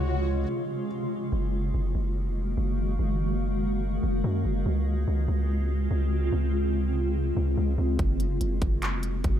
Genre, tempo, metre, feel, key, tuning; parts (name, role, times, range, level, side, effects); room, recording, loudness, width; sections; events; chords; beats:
hip hop, atmospheric cloud-rap; 144 BPM; 4/4; half-time; Gb lydian; A4 = 439 Hz
felt-muted upright piano; melody; 0.0-0.9 s; Db5; -46 LUFS; right 2 dB; digital delay
granular cloud pad; sustained chords; 0.0-9.4 s; C3 to Gb4; -30 LUFS; equal; built-in reverb, sidechain pumping
long sustained 808-style bass; bass; 0.0-9.4 s; F1 to Gb2; -26 LUFS; equal
swell; sound effects; 0.0-0.5 s; -38 LUFS; left 1 dB
industrial drum kit; drums; 8.0-9.3 s; handclaps, hi-hat, kick drum; -28 LUFS; equal
little or no reverb; -25 LUFS; side -10 dB against mid
0.0-1.3 A section; 1.3-9.4 B section
swell 0.0-1.3; break 0.5-1.3
0.0 Dbmaj7; 1.3 Gb69; 4.7 Dbmaj7; 8.0 Gb69
0.07 0.49 0.91 | 1.32 1.74 2.16 2.58 | 2.99 3.41 3.83 4.24 | 4.66 5.08 5.49 5.91 | 6.33 6.74 7.16 7.58 | 7.99 8.41 8.82 9.24